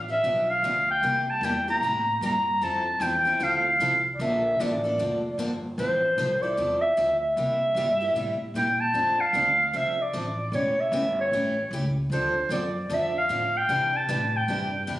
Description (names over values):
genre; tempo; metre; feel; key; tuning
acoustic string swing (jazz manouche); 152 BPM; 4/4; swing 62% on 8ths; F major; A4 = 441 Hz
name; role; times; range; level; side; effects
upright bass; bass; 0.0-15.0 s; E1 to C3; -33 LUFS; equal; none
breathy clarinet; melody; 0.1-14.9 s; C5 to Bb5; -23 LUFS; equal; slapback echo, plate reverb
picked steel-string acoustic guitar; accompaniment; 0.1-15.0 s; C3 to A4; -32 LUFS; left 1 dB; none
room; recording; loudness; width
moderate studio reverb, RT60 0.7 s; recorded on a phone in the room, studio reverb; -22 LUFS; side -15 dB against mid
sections
0.0-8.9 A section; 8.9-15.0 B section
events
none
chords
0.0 G7; 1.0 C7; 2.6 Fmaj7; 4.2 Bbmaj7; 5.8 Fmaj7; 7.4 C6; 8.9 F6; 10.5 A7/E; 12.1 Dm7; 13.7 Cadd9